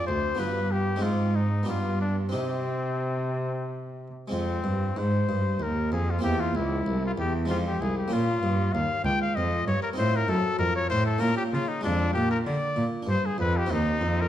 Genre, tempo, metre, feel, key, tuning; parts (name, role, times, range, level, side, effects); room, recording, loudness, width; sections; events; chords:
classical, baroque-style sonata movement with continuo; 95 BPM; 3/4; rubato; C minor, F minor from 4.3 s; A4 = 437 Hz
bright trumpet; melody; 0.0-14.3 s; C4 to G5; -29 LUFS; left 3 dB
harpsichord; accompaniment; 0.0-14.3 s; C2 to Ab4; -30 LUFS; right 1 dB
rich cello; bass; 0.1-14.3 s; C2 to D3; -28 LUFS; right 1 dB
wet recital hall reverb, RT60 1.5 s; dark, warm production; -24 LUFS; side -11 dB against mid
0.0-4.3 A section; 4.3-14.3 A section
0.4 G7; 1.0 Ab; 1.7 G7; 2.3 Cm; 4.3 Fm; 6.2 C7; 7.5 Fm; 8.1 Bbm; 10.0 F7; 11.2 Bbm; 11.8 Ddim/F; 13.1 G5; 13.7 Cm/Eb